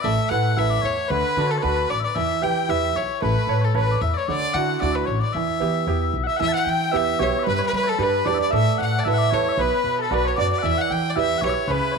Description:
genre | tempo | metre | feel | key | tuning
celtic folk, Celtic reel | 227 BPM | 4/4 | swing 54% on 8ths | E dorian | A4 = 440 Hz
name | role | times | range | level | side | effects
clear fiddle | melody | 0.0-12.0 s | A4 to G5 | -24 LUFS | left 1 dB | none
mellow small bagpipes | second line | 0.0-12.0 s | A4 to A5 | -26 LUFS | left 14 dB | none
bright baby grand piano | accompaniment | 0.0-12.0 s | C#3 to D5 | -25 LUFS | right 13 dB | none
upright bass | bass | 0.0-12.0 s | A1 to G3 | -25 LUFS | left 1 dB | none
concert harp | second line | 6.3-12.0 s | A4 to G5 | -29 LUFS | right 10 dB | none
room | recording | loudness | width
moderate plate reverb, RT60 2.5 s | 1960s-style stereo with parts hard left and right | -19 LUFS | side -5 dB against mid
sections
0.0-6.4 A section; 6.4-12.0 A section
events
none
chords
0.0 Asus2; 1.1 D; 2.2 Em; 3.2 Aadd9; 4.3 Dadd9; 5.3 Em; 7.5 G; 8.5 Asus2; 9.6 Bm; 10.6 Em

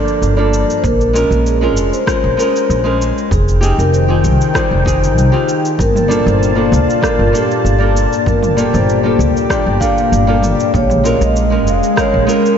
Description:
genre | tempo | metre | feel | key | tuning
sunset chillout | 97 BPM | 4/4 | straight | unclear | A4 = 440 Hz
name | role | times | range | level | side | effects
vibraphone with soft mallets | melody | 0.0-12.6 s | G4 to F5 | -18 LUFS | equal | diffuse ambient delay
nylon-string guitar | accompaniment | 0.0-12.6 s | G3 to Bb4 | -18 LUFS | equal | auto-pan, diffuse ambient delay
lush unison pad | sustained chords | 0.0-12.6 s | Bb2 to A5 | -19 LUFS | left 3 dB | chorus
deep house drum kit | drums | 0.1-12.6 s | cabasa, rim click, toms | -24 LUFS | right 1 dB | overdrive
upright bass | bass | 0.2-12.2 s | F1 to D2 | -15 LUFS | equal | tube saturation
electronic kick drum | drums | 0.8-12.1 s | none | -20 LUFS | equal | overdrive
room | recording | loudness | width
moderate cathedral reverb, RT60 6.5 s | dreamy mix soaked in reverb, nothing above 7.7 kHz | -11 LUFS | side -8 dB against mid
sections
0.0-12.6 A section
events
none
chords
0.0 Gm9; 0.8 Bbm9; 3.3 Fm9; 5.8 Gm9; 10.7 Bbm9

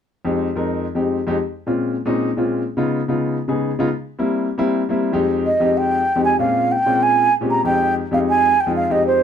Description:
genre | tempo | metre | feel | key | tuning
jazz | 191 BPM | 4/4 | straight | F minor | A4 = 439 Hz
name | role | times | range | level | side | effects
warm concert grand piano | accompaniment | 0.2-9.2 s | F2 to Bb4 | -19 LUFS | left 2 dB | none
breathy mellow concert flute | melody | 5.5-9.2 s | C5 to Bb5 | -16 LUFS | right 3 dB | plate reverb
room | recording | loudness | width
moderate studio reverb, RT60 0.5 s | none | -16 LUFS | side -8 dB against mid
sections
0.1-5.1 A section; 5.1-9.2 B section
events
none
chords
0.1 Fm7; 1.4 Bbm7; 2.6 Db7; 3.9 C7; 5.1 Fm9; 6.4 Bbm9; 7.6 Fm9

